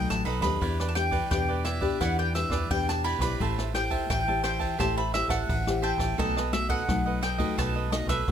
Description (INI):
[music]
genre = samba and choro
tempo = 86 BPM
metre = 4/4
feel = straight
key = E minor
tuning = A4 = 440 Hz
[part]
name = mandolin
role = melody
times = 0.0-8.3 s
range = D#5 to B5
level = -30 LUFS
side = equal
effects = none
[part]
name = cavaquinho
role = accompaniment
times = 0.0-8.3 s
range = D#4 to A5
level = -34 LUFS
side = right 7 dB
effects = none
[part]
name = nylon-string guitar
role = accompaniment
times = 0.0-8.3 s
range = B2 to C5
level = -32 LUFS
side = left 5 dB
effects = none
[part]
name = metallic FM bass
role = bass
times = 0.0-8.3 s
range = A1 to E2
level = -31 LUFS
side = equal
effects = none
[part]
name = jazz brush drum kit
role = drums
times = 0.1-8.3 s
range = kick drum, ride cymbal, rim click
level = -33 LUFS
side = equal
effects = none
[sound]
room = light reverb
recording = close, detailed microphones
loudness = -25 LUFS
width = side -9 dB against mid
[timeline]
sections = 0.0-8.3 A section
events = none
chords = 0.0 B7; 0.6 Em7; 3.4 Am7; 6.2 B7